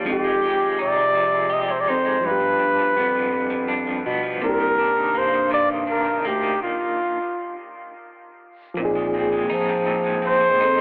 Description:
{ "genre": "slow six-eight R&B", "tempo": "55 BPM (dotted quarters)", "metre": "6/8", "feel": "straight", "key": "unclear", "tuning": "A4 = 440 Hz", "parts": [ { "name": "electric guitar at the edge of break-up", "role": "second line", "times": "0.0-10.8 s", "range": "G2 to G4", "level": "-29 LUFS", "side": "equal", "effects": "tremolo, dub echo" }, { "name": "reed electric piano", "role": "accompaniment", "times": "0.0-10.8 s", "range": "C3 to Ab4", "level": "-30 LUFS", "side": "equal", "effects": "fast tremolo, dub echo" }, { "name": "mellow bass clarinet", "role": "bass", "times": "0.0-10.8 s", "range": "C2 to F3", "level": "-29 LUFS", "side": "equal", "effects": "none" }, { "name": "breathy flugelhorn", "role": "melody", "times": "0.1-10.8 s", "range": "F4 to Eb5", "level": "-23 LUFS", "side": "equal", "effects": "dub echo" } ], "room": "light reverb, small room reverb", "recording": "echo-heavy mix, telephone sound", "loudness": "-21 LUFS", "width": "mono", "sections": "0.0-8.8 A section; 8.8-10.8 B section", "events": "stop 6.6-8.8", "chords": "0.1 Fm9; 2.2 G7; 4.4 Cm9; 6.6 N.C.; 8.8 Bb9sus4", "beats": "| 0.06 1.15 | 2.24 3.33 | 4.42 5.51 | 6.60 7.69 | 8.78 9.87" }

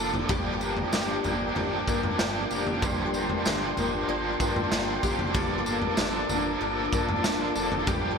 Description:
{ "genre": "dream pop", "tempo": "95 BPM", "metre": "4/4", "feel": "straight", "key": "G minor", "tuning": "A4 = 443 Hz", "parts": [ { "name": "overdriven electric guitar", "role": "accompaniment", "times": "0.0-8.2 s", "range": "G2 to A4", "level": "-30 LUFS", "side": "right 2 dB", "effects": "tremolo, wide subtle chorus" }, { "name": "mellow tonewheel organ", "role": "sustained chords", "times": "0.0-8.2 s", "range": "Bb3 to D6", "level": "-32 LUFS", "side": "equal", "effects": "chorus vibrato, lush chorus" }, { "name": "picked twelve-string acoustic guitar", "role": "arpeggios", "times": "0.0-8.2 s", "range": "G2 to A4", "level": "-31 LUFS", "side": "left 5 dB", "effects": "ensemble chorus, digital delay" }, { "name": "chorused synth bass", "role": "bass", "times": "0.0-8.2 s", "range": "F1 to G2", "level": "-37 LUFS", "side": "right 1 dB", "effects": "none" }, { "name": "raw garage drum kit", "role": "drums", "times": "0.1-8.0 s", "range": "kick drum, snare drum, tambourine, toms", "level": "-30 LUFS", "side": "equal", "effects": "gated reverb" } ], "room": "moderate plate reverb, RT60 2.1 s", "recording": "bright 1980s-style digital production", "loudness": "-24 LUFS", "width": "side -5 dB against mid", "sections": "0.0-8.2 A section", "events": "none", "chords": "0.0 Gm7; 5.3 Bbmaj7/G", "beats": "| 0.29 0.92 1.56 2.19 | 2.82 3.45 4.08 4.71 | 5.34 5.98 6.61 7.24 | 7.87" }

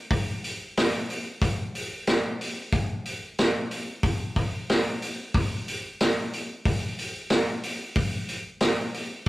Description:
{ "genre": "rock", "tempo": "92 BPM", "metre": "4/4", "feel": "straight", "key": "none", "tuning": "none", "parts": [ { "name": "vintage drum kit", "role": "drums", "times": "0.1-9.3 s", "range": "hi-hat, kick drum, snare drum", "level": "-25 LUFS", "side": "equal", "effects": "none" } ], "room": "light reverb", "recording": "rough rehearsal-room recording", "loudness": "-25 LUFS", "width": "side -17 dB against mid", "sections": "0.0-9.3 A section", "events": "none", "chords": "none", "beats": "0.10 0.76 | 1.41 2.07 2.72 3.38 | 4.03 4.69 5.34 6.00 | 6.65 7.31 7.96 8.62 | 9.27" }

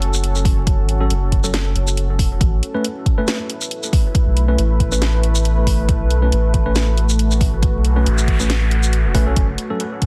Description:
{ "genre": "deep dubstep", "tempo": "138 BPM", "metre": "4/4", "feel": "swing 55% on 16ths, half-time", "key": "unclear", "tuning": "A4 = 440 Hz", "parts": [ { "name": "deep dark ambient pad", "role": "sustained chords", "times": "0.0-10.1 s", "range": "A3 to B4", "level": "-28 LUFS", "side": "equal", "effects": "chorus, built-in reverb" }, { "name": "soft dub sub bass", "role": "bass", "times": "0.0-9.6 s", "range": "E1 to B1", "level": "-19 LUFS", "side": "equal", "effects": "none" }, { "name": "garage drum kit", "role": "drums", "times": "0.0-10.1 s", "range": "hi-hat, shaker, snare drum", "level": "-26 LUFS", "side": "equal", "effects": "none" }, { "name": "electronic kick drum", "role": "drums", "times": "0.5-10.1 s", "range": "none", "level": "-19 LUFS", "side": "equal", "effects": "none" }, { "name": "tine electric piano", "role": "stabs", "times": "1.0-9.8 s", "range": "F#3 to B4", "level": "-28 LUFS", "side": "equal", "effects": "overdrive, dub echo" }, { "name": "noise sweep", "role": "sound effects", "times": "7.8-9.4 s", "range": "none", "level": "-31 LUFS", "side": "equal", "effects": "none" } ], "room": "digital ambience", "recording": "dense, heavily limited modern master, vinyl crackle", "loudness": "-17 LUFS", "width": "mono", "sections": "0.0-10.1 A section", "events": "noise sweep 7.8-9.4", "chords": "0.0 F#m; 2.4 Aadd9; 9.4 F#m", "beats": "0.23 | 0.67 1.10 1.54 1.97 | 2.41 2.84 3.28 3.71 | 4.15 4.58 5.02 5.45 | 5.89 6.32 6.76 7.19 | 7.62 8.06 8.49 8.93 | 9.37 9.80" }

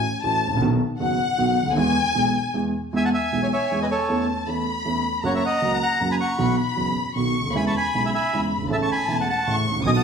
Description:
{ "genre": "tango", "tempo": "157 BPM", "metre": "3/4", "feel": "rubato", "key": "E major", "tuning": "A4 = 439 Hz", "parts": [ { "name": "warm studio violin section", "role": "second line", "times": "0.0-10.0 s", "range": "F#5 to D#6", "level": "-25 LUFS", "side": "left 4 dB", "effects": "none" }, { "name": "dark concert grand piano", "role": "accompaniment", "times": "0.0-10.0 s", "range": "E1 to A4", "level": "-23 LUFS", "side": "right 2 dB", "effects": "none" }, { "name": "bandoneon", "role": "melody", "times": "3.0-10.0 s", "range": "A4 to C#6", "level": "-24 LUFS", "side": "right 1 dB", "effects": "none" } ], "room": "wet large studio reverb, RT60 1.1 s", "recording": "heard from further back in the room", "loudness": "-20 LUFS", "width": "side -6 dB against mid", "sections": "0.0-2.9 A section; 2.9-10.0 B section", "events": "violin section solo 0.0-2.9", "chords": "0.0 F#m7; 0.6 B; 1.8 E; 4.1 A/E; 5.2 F#; 6.4 Bsus4; 7.2 B; 7.5 E6; 8.7 A", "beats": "0.24 | 0.62 1.00 1.38 | 1.77 2.15 2.55 | 2.94 3.33 3.71 | 4.10 4.48 4.86 | 5.24 5.62 6.00 | 6.38 6.77 7.16 | 7.55 7.94 8.32 | 8.71 9.09 9.47 | 9.85" }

